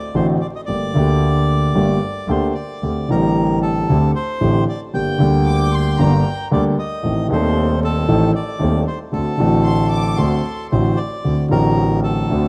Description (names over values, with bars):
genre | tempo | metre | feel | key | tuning
tango | 114 BPM | 4/4 | rubato | G harmonic minor | A4 = 440 Hz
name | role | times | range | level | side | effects
bandoneon | melody | 0.0-12.5 s | A4 to G5 | -27 LUFS | equal | none
warm concert grand piano | accompaniment | 0.1-12.5 s | Eb1 to A4 | -19 LUFS | equal | none
bright double bass | bass | 0.1-12.5 s | G1 to Eb2 | -26 LUFS | equal | none
warm studio violin section | second line | 5.5-6.4, 9.6-10.6 s | Bb5 to D6 | -31 LUFS | equal | none
room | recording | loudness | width
light reverb, small room ambience | rough home demo mix, vinyl crackle, faint mains hum | -18 LUFS | mono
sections
0.0-12.5 A section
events
none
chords
0.0 D7; 0.7 Gmadd9; 2.8 D7sus4; 4.9 Gm; 7.0 Adim; 9.1 D7